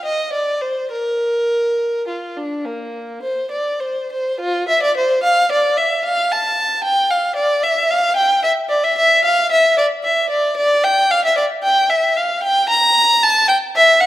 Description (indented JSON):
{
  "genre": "classical, baroque-style suite movement for unaccompanied violin",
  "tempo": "64-76 BPM (dotted quarters)",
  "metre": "12/8",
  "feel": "rubato",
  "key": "Bb major, F major from 4.4 s",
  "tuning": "A4 = 440 Hz",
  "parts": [
    { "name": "warm violin", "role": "solo", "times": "0.0-14.1 s", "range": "Bb3 to Bb5", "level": "-14 LUFS", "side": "equal", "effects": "none" }
  ],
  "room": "wet recital hall reverb, RT60 1.7 s",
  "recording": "none",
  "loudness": "-14 LUFS",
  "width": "side -14 dB against mid",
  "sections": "0.0-4.4 A section; 4.4-14.1 A section",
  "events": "none",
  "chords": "none",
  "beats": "0.05 | 0.91 1.79 2.65 3.50 | 4.40 5.23 6.03 6.84 | 7.63 8.43 9.24 10.04 | 10.84 11.64 12.43 13.23 | 14.02"
}